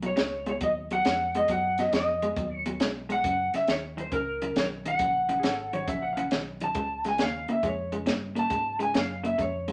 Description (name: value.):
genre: electric blues shuffle.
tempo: 137 BPM.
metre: 4/4.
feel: swing 67% on 8ths.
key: F# major.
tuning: A4 = 440 Hz.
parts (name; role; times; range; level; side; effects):
electric guitar through a small old amp; riff; 0.0-9.7 s; F#2 to A#3; -35 LUFS; equal; none.
vintage muted fingered electric bass; bass; 0.0-9.7 s; G#1 to G#2; -42 LUFS; equal; none.
compact cocktail drum kit; drums; 0.0-9.7 s; hi-hat, kick drum, snare drum; -33 LUFS; equal; none.
electric slide guitar; melody; 0.1-9.7 s; A#4 to A5; -30 LUFS; equal; none.
bright upright piano; second line; 5.4-6.4 s; G#4 to F#5; -35 LUFS; equal; none.
room: wet studio reverb, RT60 0.7 s.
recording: none.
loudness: -28 LUFS.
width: mono.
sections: 0.0-9.7 A section.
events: none.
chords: 0.0 B; 3.2 F#; 6.8 C#.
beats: 0.17 0.61 1.05 | 1.49 1.93 2.37 2.81 | 3.24 3.68 4.12 4.56 | 5.00 5.44 5.88 6.32 | 6.75 7.19 7.63 8.07 | 8.51 8.95 9.39.